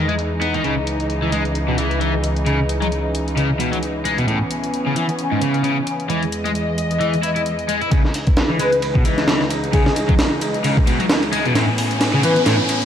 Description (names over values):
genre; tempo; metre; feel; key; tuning
breakbeat, breaks; 132 BPM; 4/4; swing 56% on 16ths; C# minor; A4 = 441 Hz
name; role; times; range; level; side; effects
muted studio string section; sustained chords; 0.0-12.8 s; C#2 to D#5; -22 LUFS; equal; sidechain pumping, low-pass filter
crunchy overdriven guitar; riff; 0.0-12.6 s; G#2 to E4; -21 LUFS; left 1 dB; low-pass filter, dub echo
electronic hi-hat; drums; 0.1-12.8 s; none; -32 LUFS; left 4 dB; low-pass filter on hats, studio reverb
breakbeat sampler-style drum kit; drums; 7.9-12.8 s; hi-hat, kick drum, ride cymbal, snare drum; -18 LUFS; equal; low-pass filter on cymbals, studio reverb, low-pass filter on kick, low-pass filter on snare, low-pass filter on hats
riser; sound effects; 9.6-12.8 s; none; -27 LUFS; equal; none
airy dreamy lead; melody; 8.6-12.4 s; G#4 to B4; -22 LUFS; left 2 dB; chorus, telephone sound, cassette tape, dub echo
room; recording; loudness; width
moderate lush hall reverb, RT60 2.1 s; dark, warm production, vinyl crackle; -16 LUFS; side -9 dB against mid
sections
0.0-7.9 A section; 7.9-12.8 B section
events
build-up 7.9-12.8; filter sweep on drum 7.9-12.8; riser 9.6-12.8; drum fill 11.6-12.8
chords
0.0 Emaj7; 0.6 C#madd9; 4.3 Aadd9 (rootless); 6.1 Emaj7; 7.9 C#madd9; 11.6 Aadd9